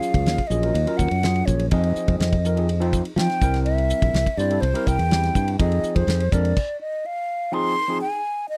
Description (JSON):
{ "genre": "electric jazz fusion", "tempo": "124 BPM", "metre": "4/4", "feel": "straight", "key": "unclear", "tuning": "A4 = 439 Hz", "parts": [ { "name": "breathy mellow silver concert flute", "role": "melody", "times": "0.0-8.6 s", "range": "C5 to C6", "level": "-27 LUFS", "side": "equal", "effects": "none" }, { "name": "overdriven tine electric piano", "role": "accompaniment", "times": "0.0-8.2 s", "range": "F3 to C5", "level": "-29 LUFS", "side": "equal", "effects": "lush chorus" }, { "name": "damped 70s drum kit", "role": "drums", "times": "0.0-6.7 s", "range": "crash cymbal, hi-hat, kick drum, ride cymbal, snare drum", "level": "-26 LUFS", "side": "equal", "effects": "none" }, { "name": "modern bright fingered electric bass", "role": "bass", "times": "0.1-6.5 s", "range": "Bb1 to F3", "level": "-24 LUFS", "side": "equal", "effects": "none" } ], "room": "little or no reverb", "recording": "dry, close 1970s-style studio recording", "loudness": "-22 LUFS", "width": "mono", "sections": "0.0-7.5 A section; 7.5-8.6 B section", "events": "stop 6.6-7.5", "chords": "0.0 Ebm11; 1.7 Fm7; 3.4 C7; 5.6 Fm7; 6.3 Bb9/F; 7.5 Fm7", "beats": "0.26 0.75 1.23 | 1.72 2.20 2.69 3.17 | 3.66 4.14 4.63 5.11 | 5.60 6.08 6.57 7.05 | 7.53 8.02 8.50" }